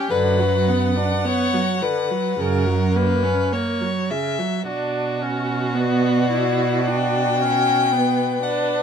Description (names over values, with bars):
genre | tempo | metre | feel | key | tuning
classical, slow romantic movement for string quartet | 51-59 BPM | 4/4 | rubato | B minor | A4 = 442 Hz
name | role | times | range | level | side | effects
dark violin | melody | 0.0-8.8 s | D5 to G5 | -24 LUFS | left 8 dB | none
warm violin | second line | 0.0-8.8 s | F#4 to E5 | -24 LUFS | left 4 dB | none
rich viola | accompaniment | 0.0-8.8 s | C#3 to E4 | -23 LUFS | right 3 dB | none
rich cello | bass | 0.1-8.8 s | F#2 to B2 | -23 LUFS | right 4 dB | none
room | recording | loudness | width
little or no reverb | close, detailed microphones | -18 LUFS | side -7 dB against mid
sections
0.0-4.7 A section; 4.7-8.8 B section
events
none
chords
0.1 Bm/F#; 2.4 F#; 4.7 Bm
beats
| 0.11 1.25 2.39 3.53 | 4.67 5.74 6.87 7.92